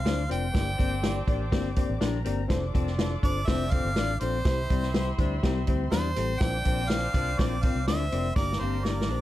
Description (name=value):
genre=uptempo 1960s-style soul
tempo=123 BPM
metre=4/4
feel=straight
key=F major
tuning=A4 = 435 Hz
part: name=clear harmonica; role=melody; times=0.0-9.2 s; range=C5 to G5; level=-32 LUFS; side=right 1 dB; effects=tape echo
part: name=clear horn section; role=second line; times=0.0-9.1 s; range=Bb3 to E5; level=-41 LUFS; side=right 3 dB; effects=none
part: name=muted studio string section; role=second line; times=0.0-9.2 s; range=Bb4 to D6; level=-42 LUFS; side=left 1 dB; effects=none
part: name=overdriven reed electric piano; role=accompaniment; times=0.0-9.2 s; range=G3 to F5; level=-34 LUFS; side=left 4 dB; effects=none
part: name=vintage muted fingered electric bass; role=bass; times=0.0-9.2 s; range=F1 to E2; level=-30 LUFS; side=right 1 dB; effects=none
part: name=clean electric guitar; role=riff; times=0.1-9.2 s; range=C4 to D4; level=-35 LUFS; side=left 9 dB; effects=none
part: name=vintage drum kit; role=drums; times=0.1-9.1 s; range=hi-hat, kick drum, snare drum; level=-28 LUFS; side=equal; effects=none
room=small room reverb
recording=dark, warm production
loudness=-24 LUFS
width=side -14 dB against mid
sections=0.0-9.2 A section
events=drum fill 8.4-9.2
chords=0.0 Bbadd9; 0.5 Gm; 2.5 F6; 4.5 C; 6.4 Bbadd9; 8.4 Gm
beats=0.06 | 0.55 1.04 1.52 2.01 | 2.50 2.99 3.48 3.97 | 4.46 4.95 5.44 5.93 | 6.42 6.90 7.39 7.88 | 8.37 8.85